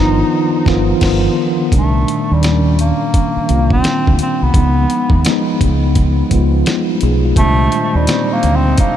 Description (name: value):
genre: R&B, neo-soul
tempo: 85 BPM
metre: 4/4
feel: swing 62% on 16ths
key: unclear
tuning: A4 = 439 Hz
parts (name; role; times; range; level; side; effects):
- breathy bass clarinet; melody; 0.0-9.0 s; G3 to Eb4; -19 LUFS; equal; none
- mellow tine electric piano; accompaniment; 0.0-9.0 s; Bb2 to Ab4; -16 LUFS; equal; medium stereo tremolo
- deep dub fingered electric bass; bass; 0.0-8.7 s; G1 to Eb2; -14 LUFS; equal; none
- dusty soul sampler-style drum kit; drums; 0.7-9.0 s; crash cymbal, hi-hat, kick drum, snare drum; -17 LUFS; equal; none
- warm horn section; stabs; 7.4-9.0 s; C3 to Eb4; -25 LUFS; right 3 dB; none
room: light reverb, digital ambience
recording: none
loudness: -11 LUFS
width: side -10 dB against mid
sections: 0.0-1.7 A section; 1.7-9.0 B section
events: band accent 0.0-1.7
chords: 0.0 G7b13; 1.7 Cm7; 4.5 Db9; 7.4 Cm7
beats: 0.31 1.02 | 1.72 2.43 3.13 3.84 | 4.55 5.25 5.96 6.66 | 7.37 8.08 8.78